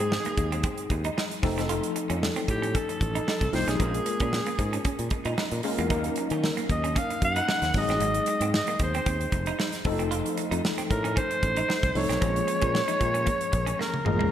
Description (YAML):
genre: polished 1980s jazz-funk pop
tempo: 114 BPM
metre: 4/4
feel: swing 54% on 16ths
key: unclear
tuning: A4 = 440 Hz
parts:
  - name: growling alto saxophone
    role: melody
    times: 0.0-14.3 s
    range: G4 to Gb5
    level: -28 LUFS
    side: equal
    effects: none
  - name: tine electric piano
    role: accompaniment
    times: 0.0-14.3 s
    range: F3 to Bb4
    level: -31 LUFS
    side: left 2 dB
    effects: overdrive, fast stereo tremolo, ensemble chorus
  - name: semi-hollow electric guitar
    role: riff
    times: 0.0-14.3 s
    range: Ab3 to F4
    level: -34 LUFS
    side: right 5 dB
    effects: lush chorus
  - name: modern bright fingered electric bass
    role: bass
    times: 0.0-14.2 s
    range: F1 to Eb3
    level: -30 LUFS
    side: equal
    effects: none
  - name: modern studio drum kit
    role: drums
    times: 0.1-14.3 s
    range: hi-hat, kick drum, snare drum, toms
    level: -30 LUFS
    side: equal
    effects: none
room: moderate lush hall reverb, RT60 2.2 s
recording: bright 1980s-style digital production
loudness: -24 LUFS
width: side -10 dB against mid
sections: 0.0-14.3 A section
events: drum fill 13.8-14.3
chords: 0.0 Ab7; 1.4 F7; 3.8 Bbm7; 5.9 Ebm7; 7.7 Ab7; 9.9 F7; 12.2 Bbm7